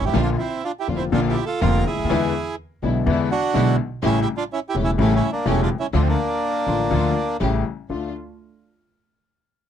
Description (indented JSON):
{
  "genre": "tango",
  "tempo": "124 BPM",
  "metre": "4/4",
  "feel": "rubato",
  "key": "D minor",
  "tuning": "A4 = 440 Hz",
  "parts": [
    { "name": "bandoneon", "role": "melody", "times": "0.0-7.4 s", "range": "A3 to Bb4", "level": "-23 LUFS", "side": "right 3 dB", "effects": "none" },
    { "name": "warm grand piano", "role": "accompaniment", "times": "0.0-8.1 s", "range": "E1 to F4", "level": "-22 LUFS", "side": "left 7 dB", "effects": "none" },
    { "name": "upright bass", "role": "bass", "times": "0.0-8.1 s", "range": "E1 to E2", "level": "-23 LUFS", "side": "right 3 dB", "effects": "none" },
    { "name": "rich studio string section", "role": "stabs", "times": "0.1-8.1 s", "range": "G#3 to G4", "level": "-30 LUFS", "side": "right 4 dB", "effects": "none" }
  ],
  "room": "little or no reverb",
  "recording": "dry, close 1970s-style studio recording",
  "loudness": "-19 LUFS",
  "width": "side -9 dB against mid",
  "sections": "0.0-7.9 A section; 7.9-9.7 B section",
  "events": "none",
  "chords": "0.1 Bb; 2.1 E7; 4.0 A7; 5.9 Dm; 7.4 A7; 7.9 Dm",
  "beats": "| 0.14 0.63 1.13 1.62 | 2.10 2.59 3.07 3.55 | 4.03 4.51 4.99 5.46 | 5.94 6.42 6.91 7.40 | 7.89"
}